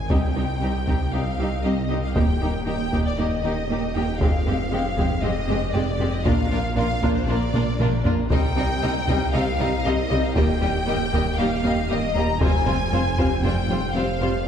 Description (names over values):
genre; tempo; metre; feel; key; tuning
cinematic, hybrid orchestral and electronic film score; 117 BPM; 4/4; straight; C minor; A4 = 440 Hz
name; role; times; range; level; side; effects
warm symphonic violin section; melody; 0.0-14.5 s; C5 to Bb5; -28 LUFS; left 2 dB; none
phased detuned saw bass; bass; 0.0-14.5 s; Eb1 to C2; -29 LUFS; equal; phaser
rich studio violin section; second line; 0.1-14.3 s; Eb4 to Eb5; -31 LUFS; left 2 dB; none
rich symphonic viola section; accompaniment; 0.1-14.3 s; G3 to Eb4; -27 LUFS; left 1 dB; none
clear symphonic double bass section; bass; 0.1-14.3 s; F1 to Eb2; -28 LUFS; right 2 dB; none
rich symphonic cello section; bass; 0.1-14.3 s; C2 to C3; -29 LUFS; right 3 dB; none
solo taiko drums; drums; 0.1-13.7 s; none; -24 LUFS; equal; none
room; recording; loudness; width
wet scoring stage reverb, RT60 1.7 s; heard from further back in the room; -20 LUFS; side -8 dB against mid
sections
0.1-14.5 A section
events
drum fill 7.5-8.3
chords
0.1 Cm; 2.2 Eb; 4.2 Fmadd9; 6.3 Bb; 8.3 Cm; 10.4 Eb; 12.4 Fmadd9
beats
| 0.10 0.62 1.13 1.64 | 2.16 2.67 3.18 3.69 | 4.21 4.72 5.23 5.75 | 6.26 6.77 7.28 7.80 | 8.31 8.82 9.34 9.85 | 10.36 10.87 11.39 11.90 | 12.41 12.93 13.44 13.95 | 14.46